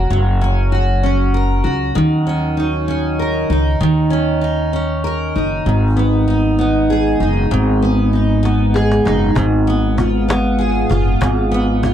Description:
six-eight pop ballad; 65 BPM (dotted quarters); 6/8; straight; Eb minor; A4 = 441 Hz
picked steel-string acoustic guitar; accompaniment; 0.0-11.9 s; Ab2 to Bb4; -16 LUFS; equal; double-tracked left and right
upright bass; bass; 0.0-11.9 s; Gb1 to Eb2; -17 LUFS; equal
cajon; drums; 8.5-11.9 s; -22 LUFS; equal
light reverb; dry, close 1970s-style studio recording; -13 LUFS; side -10 dB against mid
0.0-11.9 A section
drum fill 8.4-9.4
0.0 Gb; 2.0 Ebm7; 5.7 Abm7; 9.4 Fdim
| 0.11 1.03 | 1.96 2.88 | 3.81 4.73 | 5.66 6.58 | 7.51 8.44 | 9.36 10.29 | 11.22

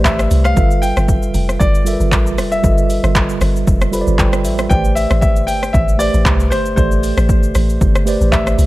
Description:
amapiano; 116 BPM; 4/4; swing 55% on 16ths; A minor; A4 = 440 Hz
warm grand piano; melody; 0.0-8.7 s; C5 to G5; -21 LUFS; left 2 dB; digital delay
mellow tine electric piano; accompaniment; 0.0-8.7 s; G3 to B5; -20 LUFS; right 3 dB; medium stereo tremolo
deep log drum bass; bass; 0.0-8.7 s; F1 to C2; -16 LUFS; equal
deep house drum kit; drums; 0.0-8.7 s; handclaps, hi-hat, kick drum, rim click, shaker; -16 LUFS; equal; overdrive
little or no reverb; dark, warm production; -12 LUFS; side -18 dB against mid
0.0-8.7 A section
tine electric piano fill 3.7-4.7
0.0 Am11; 0.6 G13; 4.7 Am11
0.05 | 0.57 1.08 1.60 2.12 | 2.64 3.15 3.67 4.19 | 4.71 5.22 5.74 6.26 | 6.78 7.29 7.81 8.33

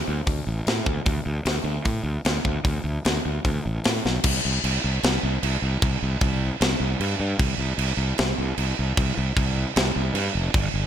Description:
heavy metal; 152 BPM; 4/4; straight; A4 = 442 Hz
fuzz fingered electric bass; bass; 0.1-10.9 s; F1 to A2; -25 LUFS; equal; overdrive
tight metal drum kit; drums; 0.3-10.6 s; crash cymbal, hi-hat, kick drum, snare drum; -24 LUFS; equal
light reverb; -21 LUFS; side -10 dB against mid
0.0-4.2 A section; 4.2-10.9 B section
drum fill 4.0; half time 4.2-10.9
0.27 0.67 | 1.06 1.46 1.86 2.25 | 2.65 3.05 3.45 3.84 | 4.24 4.63 5.03 5.42 | 5.82 6.21 6.61 7.00 | 7.39 7.79 8.18 8.57 | 8.97 9.36 9.75 10.14 | 10.54

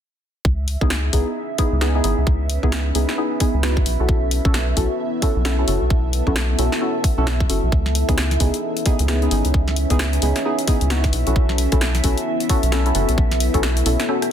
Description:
UK garage, two-step garage; 132 BPM; 4/4; swing 60% on 16ths; C# minor; A4 = 438 Hz
deep dark ambient pad; texture; 1.5-14.3 s; B3 to B4; -27 LUFS; left 1 dB; chorus, built-in reverb, sidechain pumping
airy breathy pad; sustained chords; 0.6-14.3 s; E5; -31 LUFS; right 6 dB; chorus, sidechain pumping
rubbery square bass; bass; 0.5-14.0 s; F#1 to C#2; -20 LUFS; equal; tube saturation
electronic kick drum; drums; 0.5-13.6 s; -19 LUFS; equal
punchy analog drum machine; drums; 0.7-14.3 s; hi-hat, rim click, snare drum; -26 LUFS; left 2 dB
deep mellow chord stab; stabs; 0.8-14.2 s; B3 to A4; -24 LUFS; left 1 dB; chorus, ping-pong delay
light reverb; dense, heavily limited modern master; -17 LUFS; side -9 dB against mid
0.5-14.3 A section
break 14.1; drum fill 14.1
0.5 C#m7; 3.9 B7sus4; 7.7 C#m7; 11.1 B7sus4
| 0.45 0.91 1.36 1.81 | 2.27 2.72 3.18 3.63 | 4.09 4.54 5.00 5.45 | 5.91 6.36 6.82 7.27 | 7.72 8.18 8.63 9.09 | 9.54 10.00 10.45 10.91 | 11.36 11.81 12.27 12.72 | 13.18 13.63 14.09

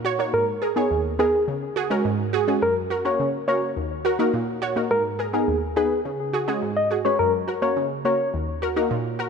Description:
dancehall; 105 BPM; 4/4; straight; Eb minor; A4 = 439 Hz
analog pluck; accompaniment; 0.0-9.3 s; Eb2 to Db5; -23 LUFS; right 1 dB; chorus
soft struck synth lead; melody; 0.3-8.3 s; Ab4 to Eb5; -24 LUFS; left 2 dB; chorus, ping-pong delay
moderate lush hall reverb, RT60 3.2 s; dark, warm production; -21 LUFS; side -6 dB against mid
0.0-9.3 A section
0.3 Abmadd9; 1.5 Dbsus4; 2.6 Gb; 3.8 Ebm; 4.9 Abmadd9; 6.1 Dbsus4; 7.2 Gb; 8.3 Ebm
| 0.34 0.91 1.48 2.05 | 2.62 3.20 3.77 4.34 | 4.91 5.48 6.05 6.62 | 7.20 7.77 8.34 8.91

